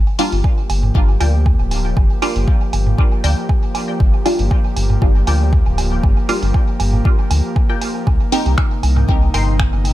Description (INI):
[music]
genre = dub techno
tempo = 118 BPM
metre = 4/4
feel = swing 53% on 16ths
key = G minor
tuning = A4 = 440 Hz
[part]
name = airy breathy pad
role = sustained chords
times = 0.3-9.9 s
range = C3 to G4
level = -25 LUFS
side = equal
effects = chorus, sidechain pumping
[part]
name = round analog bass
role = bass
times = 0.0-9.9 s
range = D1 to D2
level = -16 LUFS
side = equal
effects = sidechain pumping
[part]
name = filtered dub chord stab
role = stabs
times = 0.2-8.5 s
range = G3 to Bb4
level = -22 LUFS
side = equal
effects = phaser, cassette tape, sidechain pumping, dub echo
[part]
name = punchy analog drum machine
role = drums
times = 0.2-9.9 s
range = finger snaps, hi-hat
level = -27 LUFS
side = equal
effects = dub echo
[part]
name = electronic woodblock and toms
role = percussion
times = 0.2-9.9 s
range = none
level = -26 LUFS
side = right 4 dB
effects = sidechain pumping on perc, sidechain pumping on toms, dub echo
[part]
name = electronic kick drum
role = drums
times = 0.4-9.7 s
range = none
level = -15 LUFS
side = equal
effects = none
[part]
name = filtered dub chord stab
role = riff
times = 1.2-9.6 s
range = F4 to C6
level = -28 LUFS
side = left 4 dB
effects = phaser, cassette tape, sidechain pumping, dub echo
[sound]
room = little or no reverb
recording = echo-heavy mix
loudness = -13 LUFS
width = side -15 dB against mid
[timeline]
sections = 0.0-9.9 A section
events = none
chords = 0.0 Gm7; 8.1 Cm7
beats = 0.44 0.95 1.46 | 1.97 2.48 2.98 3.49 | 4.00 4.51 5.02 5.53 | 6.04 6.54 7.05 7.56 | 8.07 8.58 9.09 9.60